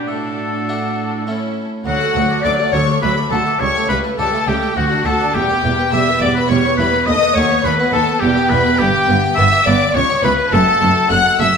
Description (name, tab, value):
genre	classical, baroque-style concerto movement with solo episodes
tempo	104 BPM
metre	3/4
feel	straight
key	D major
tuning	A4 = 440 Hz
part	clear oboe	melody	0.0-11.6 s	F#4 to F#5	-18 LUFS	left 1 dB	none
part	warm symphonic violin section	melody	0.0-11.6 s	F#5 to F#6	-22 LUFS	left 4 dB	none
part	rich chamber violin section	second line	0.0-11.5 s	E4 to F#5	-21 LUFS	left 2 dB	none
part	harpsichord	accompaniment	0.0-11.6 s	C#2 to E5	-24 LUFS	right 1 dB	none
part	rich symphonic viola section	accompaniment	0.0-11.5 s	F#3 to F#4	-23 LUFS	right 2 dB	none
part	warm symphonic cello section	bass	0.0-11.5 s	C#2 to A2	-22 LUFS	right 3 dB	none
part	rich chamber double bass section	bass	1.9-11.5 s	E1 to D#2	-23 LUFS	right 2 dB	none
room	wet recital hall reverb, RT60 1.8 s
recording	minimal, uncompressed stereo recording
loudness	-13 LUFS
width	side -6 dB against mid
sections	0.0-1.9 A section; 1.9-11.6 B section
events	none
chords	0.1 D/A; 1.3 A; 1.9 D; 3.6 A7/C#; 4.8 D; 5.3 Em; 7.1 B7/D#; 8.2 Em; 8.8 G; 10.0 C#m7b5; 10.5 F#m